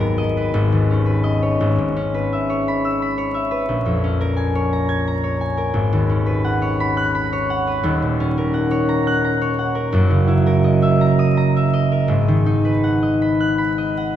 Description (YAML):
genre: classical, solo harp piece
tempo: 57 BPM (dotted quarters)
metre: 6/8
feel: uneven beats, rubato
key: G# minor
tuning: A4 = 441 Hz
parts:
  - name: concert harp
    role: solo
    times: 0.0-14.2 s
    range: D#1 to G#6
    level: -16 LUFS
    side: equal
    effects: none
room: wet church reverb, RT60 3.1 s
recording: vinyl crackle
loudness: -16 LUFS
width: side -10 dB against mid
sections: 0.0-14.2 A section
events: none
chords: 0.0 G#madd9; 0.5 Bmaj9/G#; 1.6 C#m7/G#; 3.7 A#m7; 5.8 G#m11; 7.9 D#m7; 9.9 F#6; 12.1 G#m7